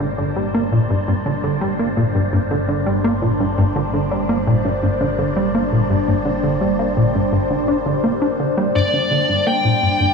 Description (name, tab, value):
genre	ambient, sequencer-driven space music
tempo	84 BPM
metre	4/4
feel	straight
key	G minor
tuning	A4 = 440 Hz
part	phased analog pad	sustained chords	0.0-10.1 s	G3 to C5	-22 LUFS	left 1 dB	phaser, chorus
part	plucky analog bass	riff	0.0-10.1 s	G2 to D4	-18 LUFS	equal	tape echo
part	analog drone	bass	0.0-10.1 s	G1	-28 LUFS	left 1 dB	chorus
part	wind-like tuned noise texture	texture	0.0-10.1 s	D5 to A6	-30 LUFS	left 1 dB	built-in reverb
part	fuzz lead guitar	melody	8.8-10.1 s	D5 to G5	-17 LUFS	left 1 dB	distortion
room	wet cathedral reverb, RT60 6.5 s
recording	in a vast, echoing space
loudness	-16 LUFS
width	side -5 dB against mid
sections	0.0-10.1 A section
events	none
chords	0.0 Gm